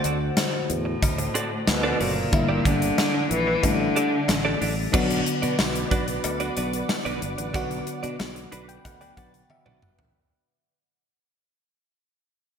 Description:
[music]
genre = 1980s-style pop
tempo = 92 BPM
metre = 4/4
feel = straight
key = unclear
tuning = A4 = 439 Hz
[part]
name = FM electric piano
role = accompaniment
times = 0.0-10.2 s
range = D3 to B5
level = -29 LUFS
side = left 2 dB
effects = chorus, phaser
[part]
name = direct-recorded clean electric guitar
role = riff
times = 0.0-10.0 s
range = Bb3 to D5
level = -31 LUFS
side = right 3 dB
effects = wide subtle chorus, ping-pong delay
[part]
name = sustaining fretless electric bass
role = bass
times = 0.0-10.1 s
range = F#1 to B2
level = -30 LUFS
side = right 1 dB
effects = wide subtle chorus
[part]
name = gated 80s drum kit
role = drums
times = 0.0-10.1 s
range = crash cymbal, hi-hat, kick drum, snare drum, tambourine, toms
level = -26 LUFS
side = equal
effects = none
[part]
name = cowbell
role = percussion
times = 0.4-9.7 s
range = none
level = -37 LUFS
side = left 6 dB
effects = none
[part]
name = clear cello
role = melody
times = 0.7-4.6 s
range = A2 to E3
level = -25 LUFS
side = left 1 dB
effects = none
[part]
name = string machine, cellos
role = sustained chords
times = 4.9-10.1 s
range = B4 to D6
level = -33 LUFS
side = equal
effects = ensemble chorus
[sound]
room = wet lush hall reverb, RT60 1.9 s, small room ambience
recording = bright 1980s-style digital production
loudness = -22 LUFS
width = side -7 dB against mid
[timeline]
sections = 0.0-4.9 A section; 4.9-10.2 B section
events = fade-out 4.9-10.2; FM electric piano fill 8.2-10.2; drum fill 9.5-10.2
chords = 0.0 D7; 2.3 Gm6; 3.6 A7sus4; 4.9 Bm

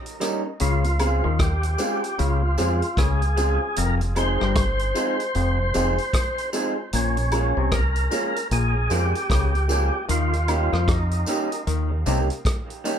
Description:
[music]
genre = roots reggae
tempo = 76 BPM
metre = 4/4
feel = swing 61% on 16ths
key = Bb dorian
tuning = A4 = 438 Hz
[part]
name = vintage drum kit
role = drums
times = 0.1-13.0 s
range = hi-hat, kick drum, rim click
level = -26 LUFS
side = equal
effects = none
[part]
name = electric guitar through a small old amp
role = accompaniment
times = 0.2-13.0 s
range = Eb3 to Bb4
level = -30 LUFS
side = right 4 dB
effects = warbly pitch drift, tape echo
[part]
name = dark upright piano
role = stabs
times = 0.2-13.0 s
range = G3 to F4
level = -30 LUFS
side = left 1 dB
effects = none
[part]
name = tambourine and woodblock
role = percussion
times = 0.2-13.0 s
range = none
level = -33 LUFS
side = left 2 dB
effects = none
[part]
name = percussive tonewheel organ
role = melody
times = 0.6-11.6 s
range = Db4 to C5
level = -27 LUFS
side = equal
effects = overdrive, fast rotary speaker, tape echo
[part]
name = overdriven clav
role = riff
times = 0.6-12.2 s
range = F2 to F3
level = -28 LUFS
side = left 5 dB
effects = none
[part]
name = deep dub fingered electric bass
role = bass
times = 0.6-12.3 s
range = F1 to F2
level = -23 LUFS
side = equal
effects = none
[sound]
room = moderate small room reverb, RT60 0.6 s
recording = none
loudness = -20 LUFS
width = side -8 dB against mid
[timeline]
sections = 0.0-13.0 A section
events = none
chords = 0.0 Eb7; 0.6 Dbmaj7; 3.8 Fm7; 6.9 Bbm7; 10.1 Eb7

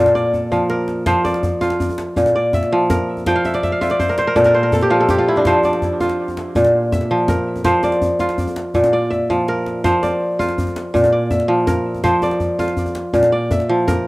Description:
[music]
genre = west african traditional, West African string and xylophone music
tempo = 109 BPM (dotted quarters)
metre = 12/8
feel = straight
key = F major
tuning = A4 = 442 Hz
[part]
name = kora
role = arpeggios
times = 0.0-14.1 s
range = Bb2 to G5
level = -15 LUFS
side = equal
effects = cassette tape, analog delay
[part]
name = djembe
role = percussion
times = 0.1-14.0 s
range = none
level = -23 LUFS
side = left 1 dB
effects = none
[sound]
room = light reverb, studio ambience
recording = home recording on cassette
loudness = -15 LUFS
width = side -20 dB against mid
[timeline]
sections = 0.0-1.1 A section; 1.1-14.1 A section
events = drum fill 0.2-1.1, 9.1-9.8; kora fill 3.3-5.5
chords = 0.0 Bb; 1.1 F5; 2.2 Bb; 3.3 Dm11/F; 4.4 Bb5; 5.5 F5; 6.5 Bb5; 7.6 F5; 8.7 Bb; 9.8 F5; 10.9 Bb; 12.0 F5; 13.1 Bb

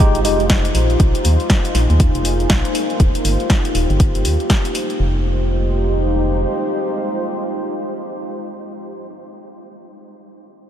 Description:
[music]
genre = deep house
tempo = 120 BPM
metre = 4/4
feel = swing 60% on 16ths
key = F minor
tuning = A4 = 438 Hz
[part]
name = deep dark ambient pad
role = sustained chords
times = 0.0-8.9 s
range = Ab3 to C5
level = -22 LUFS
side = equal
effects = chorus, built-in reverb, sidechain pumping
[part]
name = organ-like FM bass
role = bass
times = 0.0-6.5 s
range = Eb1 to Eb2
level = -18 LUFS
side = equal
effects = sidechain pumping
[part]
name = deep house drum kit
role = drums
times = 0.0-5.0 s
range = hi-hat, snare drum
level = -23 LUFS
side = equal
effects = overdrive
[part]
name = electronic kick drum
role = drums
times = 0.0-4.6 s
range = none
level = -15 LUFS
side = equal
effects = overdrive
[sound]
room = light reverb, digital ambience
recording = none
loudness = -15 LUFS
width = side -10 dB against mid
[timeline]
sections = 0.0-5.0 A section; 5.0-9.0 B section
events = none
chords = 0.0 Fm9; 1.0 Bb9sus4; 2.7 Eb69; 5.0 Fm9

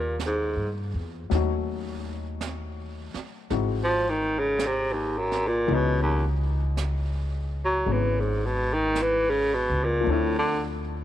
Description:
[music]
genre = jazz ballad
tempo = 55 BPM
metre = 4/4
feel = swing 67% on 8ths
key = unclear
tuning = A4 = 444 Hz
[part]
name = warm baritone saxophone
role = melody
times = 0.0-10.6 s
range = Eb2 to Gb3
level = -25 LUFS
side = equal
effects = none
[part]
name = clear upright piano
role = accompaniment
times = 0.0-11.0 s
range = Fb3 to Ab4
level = -33 LUFS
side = left 14 dB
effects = none
[part]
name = upright bass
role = bass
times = 0.0-11.0 s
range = Ab1 to G2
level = -28 LUFS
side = equal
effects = none
[part]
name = jazz brush drum kit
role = drums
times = 0.2-11.0 s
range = brushed snare drum, hi-hat, snare drum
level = -40 LUFS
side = right 8 dB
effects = none
[sound]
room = light reverb, studio reverb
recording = 1960s-style stereo with parts hard left and right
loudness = -23 LUFS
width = side -12 dB against mid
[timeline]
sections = 0.0-11.0 A section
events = baritone saxophone solo 0.0-11.0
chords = 0.0 Abmaj9; 1.3 Ebm7b5; 3.5 Ab7b13; 5.7 Dbm9; 10.1 Dm9

